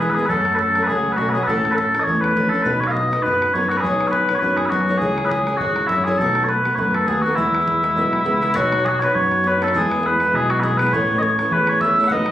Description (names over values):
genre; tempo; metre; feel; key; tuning
celtic folk, Celtic reel; 203 BPM; 4/4; swing 55% on 8ths; unclear; A4 = 441 Hz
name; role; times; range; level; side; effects
mellow small bagpipes; melody; 0.0-12.3 s; E4 to F#5; -18 LUFS; left 1 dB; none
fingerpicked acoustic archtop guitar; accompaniment; 0.0-12.3 s; A2 to C#5; -23 LUFS; equal; none
fat analog bass; bass; 0.0-12.3 s; G#1 to F#2; -25 LUFS; equal; none
bodhran; percussion; 0.0-12.3 s; none; -32 LUFS; right 1 dB; none
room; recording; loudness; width
moderate studio reverb, RT60 0.7 s; recorded on a phone in the room, club reverb, compression; -16 LUFS; side -12 dB against mid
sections
0.0-8.6 A section; 8.6-12.3 B section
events
none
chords
0.3 F#m; 1.5 A; 2.7 B; 3.8 Badd9; 5.0 C#m; 6.2 B7; 7.4 E; 8.6 Badd9; 9.7 E; 10.9 A